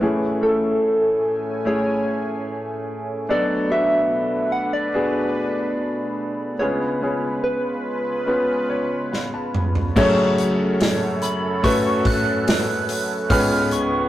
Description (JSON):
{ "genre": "pop ballad", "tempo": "72 BPM", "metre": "4/4", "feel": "straight", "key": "F# harmonic minor from 10.0 s", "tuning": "A4 = 442 Hz", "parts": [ { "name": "soft struck synth lead", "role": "melody", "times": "0.0-14.1 s", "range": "A4 to F#6", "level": "-23 LUFS", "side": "right 1 dB", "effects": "chorus, tremolo" }, { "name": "bright concert grand piano", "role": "accompaniment", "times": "0.0-14.1 s", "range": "C#2 to A5", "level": "-22 LUFS", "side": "left 1 dB", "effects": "none" }, { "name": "sweeping resonant pad", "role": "sustained chords", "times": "0.0-14.1 s", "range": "C#2 to G#5", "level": "-29 LUFS", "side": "right 2 dB", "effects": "chorus" }, { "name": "natural country drum kit", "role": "drums", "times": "9.1-13.9 s", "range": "crash cymbal, hi-hat, kick drum, snare drum, toms", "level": "-22 LUFS", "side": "equal", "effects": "none" } ], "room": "moderate stone room reverb, RT60 0.9 s", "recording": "rough rehearsal-room recording, tube saturation", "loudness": "-19 LUFS", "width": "side -14 dB against mid", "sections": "0.0-10.0 A section; 10.0-14.1 B section", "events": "grand piano fill 8.3-10.0; drum fill 9.1-10.0", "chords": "0.0 Amaj7; 3.3 Bm7; 6.6 C#7; 10.0 F#m; 13.3 C#7" }